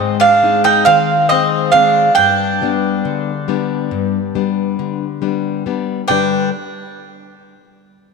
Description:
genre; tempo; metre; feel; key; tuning
greek folk, Greek bouzouki band; 138 BPM (eighths); 9/8; straight; G phrygian dominant; A4 = 440 Hz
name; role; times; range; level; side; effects
Greek bouzouki; melody; 0.0-6.5 s; Eb5 to G5; -12 LUFS; right 5 dB; none
Greek bouzouki; second line; 0.0-6.5 s; C4 to Eb4; -23 LUFS; left 9 dB; none
nylon-string guitar; accompaniment; 0.0-6.5 s; G2 to D5; -18 LUFS; left 10 dB; none
room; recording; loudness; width
moderate plate reverb, RT60 3.1 s; 1960s-style stereo; -12 LUFS; side -4 dB against mid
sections
0.0-6.1 A section; 6.1-8.1 B section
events
none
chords
0.0 Ab; 2.2 G

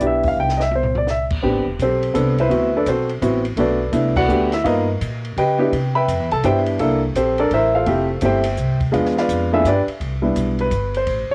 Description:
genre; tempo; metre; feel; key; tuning
jazz piano trio; 168 BPM; 3/4; swing 64% on 8ths; unclear; A4 = 440 Hz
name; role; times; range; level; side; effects
warm baby grand piano; melody; 0.0-11.3 s; G3 to B5; -20 LUFS; equal; cassette tape
upright bass; bass; 0.0-11.3 s; E1 to C#3; -25 LUFS; equal; none
compact cocktail drum kit; drums; 0.0-11.2 s; crash cymbal, hi-hat, kick drum, ride cymbal, snare drum, toms; -32 LUFS; equal; cassette tape
room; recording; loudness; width
small room ambience; home recording on cassette; -19 LUFS; mono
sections
0.0-1.4 A section; 1.4-10.0 B section; 10.0-11.3 C section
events
drum fill 0.4-1.1; band accent 4.1; grand piano solo 10.0-11.3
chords
0.0 Cmaj7; 1.4 Am11; 2.5 D13; 3.6 Gmaj9 (rootless); 4.6 Gaug; 5.7 Cmaj7; 6.8 C13; 7.9 Fmaj9; 8.9 E7b9; 9.6 G; 10.0 Cmaj7

